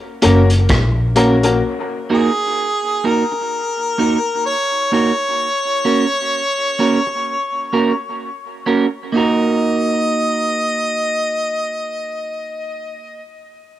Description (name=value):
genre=dub reggae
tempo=64 BPM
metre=4/4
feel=swing 58% on 16ths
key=Eb minor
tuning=A4 = 440 Hz
part: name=clean electric guitar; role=accompaniment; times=0.2-13.3 s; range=Bb3 to Bb4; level=-19 LUFS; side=right 4 dB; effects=dub echo
part: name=warm upright piano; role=stabs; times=0.2-1.6 s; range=Bb3 to Bb4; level=-18 LUFS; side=left 4 dB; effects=dub echo
part: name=upright bass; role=bass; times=0.2-1.6 s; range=Gb1 to Bb1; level=-15 LUFS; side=equal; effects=none
part: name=vintage drum kit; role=drums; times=0.2-1.6 s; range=hi-hat, kick drum, rim click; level=-18 LUFS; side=equal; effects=cassette tape
part: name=clear harmonica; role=melody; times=2.1-13.2 s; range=Ab4 to Eb5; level=-19 LUFS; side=left 1 dB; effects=dub echo
room=light reverb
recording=home recording on cassette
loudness=-15 LUFS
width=side -13 dB against mid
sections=0.0-9.1 A section; 9.1-12.9 B section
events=break 1.6-9.1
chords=0.0 Gb; 1.6 Ebm; 5.4 Gb; 9.1 Ebm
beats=0.69 | 1.63 2.56 3.50 4.44 | 5.38 6.31 7.25 8.19 | 9.13 10.06 11.00 11.94